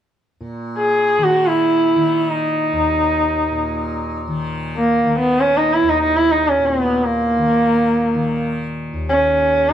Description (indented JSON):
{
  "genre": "indian classical",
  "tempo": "free time",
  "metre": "none",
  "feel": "none",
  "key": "Eb raga bhairavi",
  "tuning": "A4 = 440 Hz",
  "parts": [
    { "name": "tanpura", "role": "drone", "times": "0.4-9.7 s", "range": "Eb2 to Eb3", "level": "-25 LUFS", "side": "left 1 dB", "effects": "stereo widening" },
    { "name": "dark sarangi", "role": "melody", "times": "0.8-9.7 s", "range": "Bb3 to Ab4", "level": "-15 LUFS", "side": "equal", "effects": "none" }
  ],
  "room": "small room ambience",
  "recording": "dry, close 1970s-style studio recording",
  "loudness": "-15 LUFS",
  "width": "side -10 dB against mid",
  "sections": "0.4-9.7 A section",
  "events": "none",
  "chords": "none",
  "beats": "free time"
}